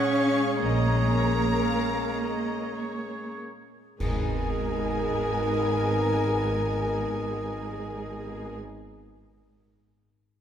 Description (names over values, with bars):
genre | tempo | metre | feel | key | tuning
cinematic, emotional film score for orchestra | 47-62 BPM | 3/4 | rubato | G# minor | A4 = 441 Hz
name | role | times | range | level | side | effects
bright symphonic violin section | melody | 0.0-8.6 s | G#5 to C#6 | -35 LUFS | left 2 dB | none
clear clarinet | second line | 0.0-8.6 s | G#4 to A#4 | -36 LUFS | left 4 dB | none
clear symphonic violin section | second line | 0.0-8.6 s | B3 to F#5 | -37 LUFS | left 2 dB | none
small flute group | second line | 0.0-8.6 s | A#4 to G#5 | -37 LUFS | left 2 dB | none
warm oboe | second line | 0.0-8.6 s | C#5 to D#5 | -37 LUFS | right 2 dB | none
rich symphonic viola section | accompaniment | 0.0-8.6 s | A#3 to G#4 | -34 LUFS | right 3 dB | none
mellow French horn section | sustained chords | 0.0-8.6 s | G#3 to A#4 | -32 LUFS | left 1 dB | none
concert harp | arpeggios | 0.0-9.1 s | G#2 to D#5 | -42 LUFS | left 6 dB | none
rich symphonic cello section | bass | 0.0-8.6 s | G#3 to C#4 | -35 LUFS | right 4 dB | none
rich symphonic double bass section | bass | 0.6-8.6 s | G#1 to A#1 | -30 LUFS | right 2 dB | none
clash cymbals and concert bass drum | percussion | 4.0-6.5 s | none | -34 LUFS | right 1 dB | none
room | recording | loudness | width
wet scoring stage reverb, RT60 2.0 s | none | -24 LUFS | side -9 dB against mid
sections
0.0-4.0 A section; 4.0-7.8 B section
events
slowing down 0.0-4.0; band accent 4.0-5.3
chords
0.0 A#m7; 4.0 G#madd9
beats
| 0.61 1.62 2.75 | 4.01 5.28 6.55